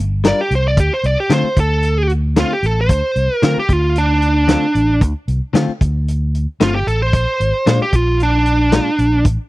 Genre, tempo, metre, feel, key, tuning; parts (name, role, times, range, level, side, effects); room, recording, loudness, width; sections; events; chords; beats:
straight-eighth soul blues; 113 BPM; 4/4; straight; D minor; A4 = 440 Hz
fingered electric bass; bass; 0.0-9.4 s; G1 to D3; -17 LUFS; equal
direct-recorded clean electric guitar; stabs; 0.2-8.9 s; Bb2 to Bb4; -19 LUFS; left 6 dB
warm soul drum kit; drums; 0.2-9.4 s; hi-hat, kick drum, snare drum; -16 LUFS; equal
smooth overdriven lead guitar; melody; 0.3-9.2 s; D4 to D5; -17 LUFS; right 1 dB
small room ambience; dry, close 1970s-style studio recording; -13 LUFS; side -18 dB against mid
0.0-9.5 A section
lead electric guitar solo 0.0-9.5
0.0 Gm7; 0.8 Dm7; 7.1 Bb7
0.25 | 0.78 1.31 1.84 2.37 | 2.90 3.43 3.96 4.49 | 5.02 5.55 6.08 6.61 | 7.14 7.67 8.20 8.72 | 9.25